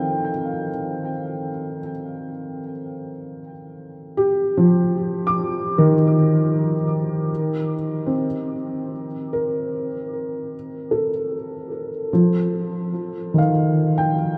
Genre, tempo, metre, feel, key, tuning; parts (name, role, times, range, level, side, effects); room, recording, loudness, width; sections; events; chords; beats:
ambient; free time; A4 = 444 Hz
felt-muted upright piano; solo; 0.0-14.4 s; Eb3 to D6; -22 LUFS; equal; delay
wet cathedral reverb, RT60 7.5 s; dark, warm production; -22 LUFS; mono
0.0-7.3 A section; 7.3-14.4 B section
0.0 Ebmaj7; 7.3 Cm9; 12.1 F7
free time